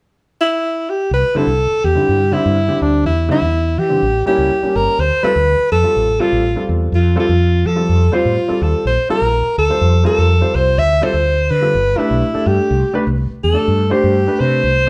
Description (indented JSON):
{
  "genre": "electric jazz fusion",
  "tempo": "124 BPM",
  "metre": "4/4",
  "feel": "straight",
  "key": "C major",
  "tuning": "A4 = 438 Hz",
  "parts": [
    { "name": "warm alto saxophone", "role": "melody", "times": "0.4-14.9 s", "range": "D4 to E5", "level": "-18 LUFS", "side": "equal", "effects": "none" },
    { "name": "mellow fretless electric bass", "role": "bass", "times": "1.1-14.9 s", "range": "G1 to F3", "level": "-19 LUFS", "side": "equal", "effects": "none" },
    { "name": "dark concert grand piano", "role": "accompaniment", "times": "1.3-14.9 s", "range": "D3 to D5", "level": "-23 LUFS", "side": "equal", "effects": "none" }
  ],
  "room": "moderate large studio reverb, RT60 1.1 s",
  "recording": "band playing live in one room",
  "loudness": "-15 LUFS",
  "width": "mono",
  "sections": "0.0-1.1 A section; 1.1-14.9 B section",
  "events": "none",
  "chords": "0.0 N.C.; 1.1 Cadd9; 3.0 Em7; 4.0 A7b9; 5.0 Dm11; 6.9 Fadd9; 8.9 Bbmaj7sus2; 10.8 Dm7; 11.7 G69; 12.7 Cmaj7sus2"
}